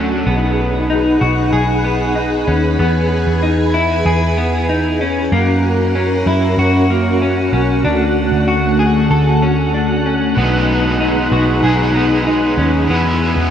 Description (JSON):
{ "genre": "dream pop", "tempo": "95 BPM", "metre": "4/4", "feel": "straight", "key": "B major", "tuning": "A4 = 440 Hz", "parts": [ { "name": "crunchy overdriven guitar", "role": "accompaniment", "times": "0.0-0.8, 10.3-13.5 s", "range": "B2 to E4", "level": "-23 LUFS", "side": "right 2 dB", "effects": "harmonic tremolo, lush chorus" }, { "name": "ensemble organ-string", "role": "sustained chords", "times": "0.0-13.5 s", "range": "D3 to G#5", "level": "-17 LUFS", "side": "equal", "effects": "ensemble chorus" }, { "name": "clean electric guitar", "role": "arpeggios", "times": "0.0-13.5 s", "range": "A#3 to A4", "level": "-18 LUFS", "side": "left 2 dB", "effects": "wide subtle chorus, tape echo" }, { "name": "vintage muted picked electric bass", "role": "bass", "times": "0.0-13.5 s", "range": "B1 to F#2", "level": "-18 LUFS", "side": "equal", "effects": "none" } ], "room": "wet huge ambient reverb, RT60 7.4 s", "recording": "dreamy mix soaked in reverb", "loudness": "-12 LUFS", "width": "side -9 dB against mid", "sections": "0.3-13.5 A section", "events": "none", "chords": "0.3 B6; 2.8 E; 5.3 F#; 7.8 D; 10.4 B6; 12.9 E" }